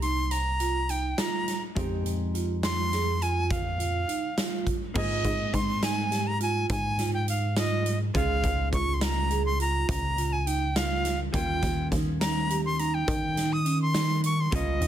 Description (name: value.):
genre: progressive instrumental, band music in an uneven meter.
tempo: 207 BPM (eighths).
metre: 11/8.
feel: straight.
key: unclear.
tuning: A4 = 440 Hz.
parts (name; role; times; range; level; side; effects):
bright reedy silver concert flute; melody; 0.0-14.9 s; Eb5 to Eb6; -30 LUFS; equal; none.
vintage hollow-body jazz guitar; accompaniment; 0.0-14.9 s; G3 to Ab4; -39 LUFS; left 1 dB; none.
vibraphone with medium mallets; arpeggios; 0.0-14.9 s; Db4 to Ab4; -34 LUFS; right 7 dB; none.
plucky analog bass; bass; 0.0-14.9 s; C2 to Eb3; -28 LUFS; equal; none.
big rock drum kit; drums; 0.0-14.9 s; crash cymbal, hi-hat, kick drum, snare drum; -31 LUFS; equal; none.
room: light reverb.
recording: dense, heavily limited modern master.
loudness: -25 LUFS.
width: side -10 dB against mid.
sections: 0.0-5.0 A section; 5.0-14.9 B section.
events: none.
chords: 0.0 Cm7; 1.8 Fm7; 5.0 Abadd9; 8.1 Dbadd9; 11.3 Eb7.